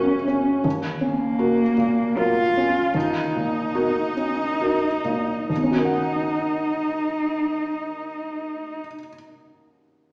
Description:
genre	neoclassical piano and strings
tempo	66-84 BPM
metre	3/4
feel	rubato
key	Eb minor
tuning	A4 = 440 Hz
part	dark cello	second line	0.0-8.8 s	Bb3 to F4	-25 LUFS	equal	none
part	felt-muted upright piano	accompaniment	0.0-10.1 s	Eb2 to Gb5	-26 LUFS	equal	none
room	wet recital hall reverb, RT60 1.8 s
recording	heard from further back in the room, small speaker sound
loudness	-23 LUFS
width	mono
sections	0.0-5.5 A section; 5.5-10.1 B section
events	slowing down 0.0-5.5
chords	0.0 Gb; 0.6 Ebm7

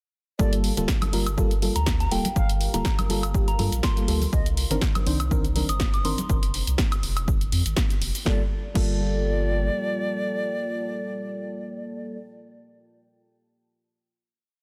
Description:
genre	deep house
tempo	122 BPM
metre	4/4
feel	swing 55% on 16ths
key	G minor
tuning	A4 = 439 Hz
part	mellow silver concert flute	melody	0.4-4.5, 8.3-12.2 s	D5 to F5	-34 LUFS	equal	digital delay
part	mellow FM electric piano	stabs	0.4-12.2 s	Eb3 to C5	-32 LUFS	equal	chorus, sidechain pumping, delay
part	round analog bass	bass	0.4-9.7 s	D1 to G2	-29 LUFS	equal	sidechain pumping
part	electronic kick drum	drums	0.4-8.9 s	none	-27 LUFS	equal	none
part	punchy analog drum machine	drums	0.4-8.9 s	crash cymbal, hi-hat, shaker, snare drum, woodblock	-33 LUFS	equal	overdrive
part	deep dark ambient pad	texture	2.1-11.9 s	Bb3 to Bb5	-42 LUFS	equal	chorus, built-in reverb, sidechain pumping
part	congas	percussion	0.8-6.3 s	none	-37 LUFS	equal	none
part	soft synth bell	melody	1.8-6.3 s	G5 to Eb6	-35 LUFS	equal	chorus, phaser, vintage 12-bit sampler grit, digital delay
room	little or no reverb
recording	dense, heavily limited modern master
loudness	-24 LUFS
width	mono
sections	0.4-8.3 drop; 8.3-12.2 final chord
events	drop 0.4-8.3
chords	0.4 Gm9; 4.3 Cm9; 6.3 N.C.; 8.3 Gm9

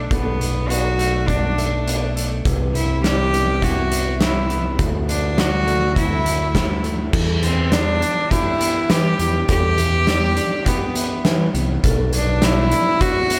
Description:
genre	post-rock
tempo	102 BPM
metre	4/4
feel	straight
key	E minor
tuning	A4 = 441 Hz
part	direct-recorded clean electric guitar	arpeggios	0.0-13.4 s	B2 to G4	-31 LUFS	equal	slapback echo
part	growling fingered electric bass	bass	0.0-12.7 s	B1 to E3	-24 LUFS	equal	overdrive
part	bright cello	melody	0.1-13.4 s	B3 to G4	-24 LUFS	equal	slapback echo
part	vibraphone with medium mallets	arpeggios	0.1-13.4 s	A4 to E5	-34 LUFS	equal	slapback echo
part	oversized low-tuned drum kit	drums	0.1-13.4 s	crash cymbal, hi-hat, kick drum, snare drum	-24 LUFS	equal	none
room	moderate concert hall reverb, RT60 2.0 s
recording	big arena sound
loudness	-19 LUFS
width	mono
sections	0.0-7.1 A section; 7.1-13.4 B section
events	none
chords	0.0 Bm7; 2.5 Cmaj7; 4.8 Dadd9; 7.1 Em7; 11.8 Bm

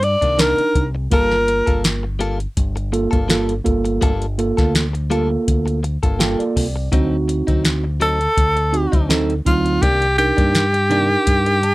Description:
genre	straight-eighth soul blues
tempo	83 BPM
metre	4/4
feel	swing 53% on 16ths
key	G minor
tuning	A4 = 442 Hz
part	warm tenor saxophone	melody	0.0-1.8, 8.0-11.7 s	F4 to D5	-17 LUFS	equal	none
part	direct-recorded clean electric guitar	stabs	0.0-11.7 s	C3 to A4	-25 LUFS	left 3 dB	none
part	deep dub fingered electric bass	bass	0.0-11.7 s	G1 to G2	-22 LUFS	equal	none
part	soft vintage rhythm box	drums	0.0-11.7 s	hi-hat, kick drum, snare drum	-19 LUFS	equal	none
part	mellow tine electric piano	accompaniment	0.4-11.7 s	F#3 to A5	-21 LUFS	right 3 dB	none
room	little or no reverb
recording	dry, close 1970s-style studio recording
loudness	-15 LUFS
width	side -19 dB against mid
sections	0.0-11.7 A section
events	tine electric piano fill 5.8-6.9, 11.3-11.7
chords	0.0 Cm9; 1.1 Gm9; 6.9 D7b9; 9.8 Cm9

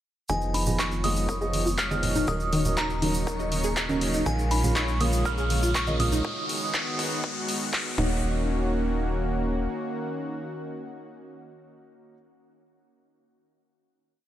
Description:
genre	progressive house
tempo	121 BPM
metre	4/4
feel	straight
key	Eb minor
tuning	A4 = 440 Hz
part	glassy synth bell	melody	0.3-7.0 s	Ab5 to F6	-32 LUFS	right 1 dB	chorus, dub echo
part	lush unison pad	sustained chords	0.3-12.1 s	Db3 to Gb4	-33 LUFS	equal	chorus, sidechain pumping
part	wide unison pluck	arpeggios	0.3-8.4 s	Eb3 to Eb5	-32 LUFS	equal	sidechain pumping, dub echo
part	dark baby grand piano	stabs	0.3-12.1 s	F3 to Gb5	-34 LUFS	right 2 dB	sidechain pumping, dub echo
part	tight sequencer bass	bass	0.3-9.7 s	Eb1 to Bb1	-28 LUFS	equal	tube saturation, sidechain pumping
part	electronic kick drum	drums	0.3-8.1 s	none	-36 LUFS	equal	high-pass filter on kick, studio reverb
part	congas	percussion	0.3-6.2 s	none	-34 LUFS	right 2 dB	sidechain pumping on perc
part	egg shaker	percussion	0.3-6.2 s	none	-39 LUFS	right 1 dB	none
part	riser	sound effects	2.4-8.2 s	none	-37 LUFS	left 2 dB	none
part	backwards swelling texture	texture	1.0-6.3 s	Db5 to Db6	-43 LUFS	left 4 dB	none
part	big-room dance drum kit	drums	0.5-7.8 s	handclaps, hi-hat	-32 LUFS	left 1 dB	studio reverb
room	light reverb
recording	none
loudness	-24 LUFS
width	side -12 dB against mid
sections	0.3-8.2 build; 8.2-12.2 final hit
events	build-up 0.3-8.2; filter sweep on synth pluck 0.3-6.2; filter sweep on analog synth pad 0.3-8.2; riser 2.4-8.2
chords	0.3 Fm7b5; 2.3 Ebm7; 4.3 Bbm7; 6.2 Abm7; 8.0 Ebm7

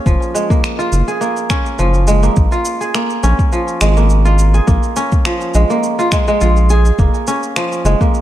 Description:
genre	organic downtempo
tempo	104 BPM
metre	4/4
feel	swing 54% on 16ths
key	Bb minor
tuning	A4 = 440 Hz
part	kora	arpeggios	0.0-8.2 s	F3 to Ab4	-16 LUFS	right 1 dB	digital delay
part	round analog bass	bass	0.1-8.0 s	Gb1 to Bb1	-12 LUFS	equal	sidechain pumping
part	electronic kick drum	drums	0.1-8.1 s	none	-14 LUFS	equal	none
part	electronic shaker and finger snaps	drums	0.1-8.2 s	none	-24 LUFS	right 1 dB	none
room	light reverb, digital ambience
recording	dark, warm production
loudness	-12 LUFS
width	side -13 dB against mid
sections	0.0-8.2 A section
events	none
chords	0.0 Gbadd9; 2.4 Bbm7; 7.0 Gbadd9

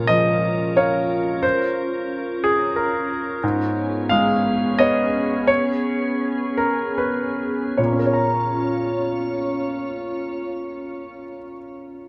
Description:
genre	neoclassical piano and strings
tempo	73-91 BPM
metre	3/4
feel	rubato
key	Bb minor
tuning	A4 = 439 Hz
part	bright concert grand piano	accompaniment	0.0-12.1 s	Ab2 to Bb5	-23 LUFS	equal	none
part	glassy FM pad	sustained chords	0.0-11.2 s	Cb4 to Db5	-27 LUFS	equal	ensemble chorus, built-in reverb
room	light reverb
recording	close, detailed microphones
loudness	-22 LUFS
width	mono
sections	0.0-7.8 A section; 7.8-12.1 B section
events	slowing down 2.4-7.8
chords	0.0 Bbmadd9; 3.4 Db7/Ab; 7.8 Bbm

